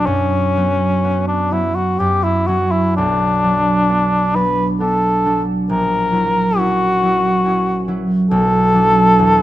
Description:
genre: classical, romantic duo for cor anglais and harp.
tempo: 61-71 BPM.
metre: 3/4.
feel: rubato.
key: B minor.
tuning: A4 = 440 Hz.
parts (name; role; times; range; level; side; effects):
mellow cor anglais; melody; 0.0-9.4 s; C#4 to B4; -16 LUFS; left 1 dB; none.
concert harp; accompaniment; 0.0-9.4 s; A#1 to E4; -17 LUFS; right 1 dB; none.
room: moderate recital hall reverb, RT60 1.5 s.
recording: close, detailed microphones.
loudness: -13 LUFS.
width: side -14 dB against mid.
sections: 0.0-9.4 A section.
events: none.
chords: 0.1 F#sus4; 2.0 F#5; 3.0 Bm; 5.7 F#7/A#; 8.3 Bm.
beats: | 0.07 1.04 2.00 | 2.97 3.91 4.82 | 5.70 6.58 7.46 | 8.31 9.19.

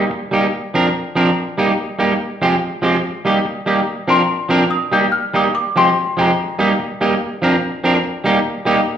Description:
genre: ska.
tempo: 144 BPM.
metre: 4/4.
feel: straight.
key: Eb major.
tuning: A4 = 443 Hz.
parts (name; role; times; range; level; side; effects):
worn celesta; melody; 0.0-0.1, 4.1-6.6 s; Bb5 to G6; -18 LUFS; left 4 dB; none.
semi-hollow electric guitar; accompaniment; 0.0-8.8 s; F3 to Bb4; -15 LUFS; right 1 dB; vibrato effect.
room: wet large studio reverb, RT60 1.0 s.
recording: band playing live in one room.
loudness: -14 LUFS.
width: side -9 dB against mid.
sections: 0.0-9.0 A section.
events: none.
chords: 0.0 Eb; 0.5 Bbadd9; 1.4 Eb; 2.2 Fmadd9; 3.0 Eb; 3.9 Bbadd9; 4.7 Eb; 5.5 Fmadd9; 6.4 Eb; 7.2 Bbadd9; 8.0 Eb.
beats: 0.11 0.53 0.94 | 1.36 1.78 2.19 2.61 | 3.03 3.44 3.86 4.28 | 4.70 5.11 5.53 5.95 | 6.36 6.78 7.20 7.61 | 8.03 8.45.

